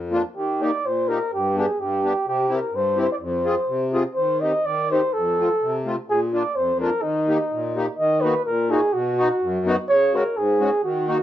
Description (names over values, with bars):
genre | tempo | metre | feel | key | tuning
alpine folk, alpine dance band | 126 BPM | 2/4 | rubato | Eb major, Eb minor from 8.0 s | A4 = 439 Hz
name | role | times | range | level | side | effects
accordion | accompaniment | 0.0-11.2 s | F2 to Ab4 | -24 LUFS | left 2 dB | light tremolo tuning
mellow flugelhorn | melody | 0.4-11.2 s | Eb4 to Eb5 | -21 LUFS | right 1 dB | plate reverb
room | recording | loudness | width
wet small room reverb, RT60 0.5 s | none | -19 LUFS | side -12 dB against mid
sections
0.0-8.0 A section; 8.0-11.2 B section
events
none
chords
0.3 Eb; 1.3 G; 2.2 C; 3.2 Fm; 4.2 Cm/Eb; 5.1 F; 6.1 Bb; 7.0 Eb; 8.0 Ebm; 8.9 B; 9.9 Dbsus4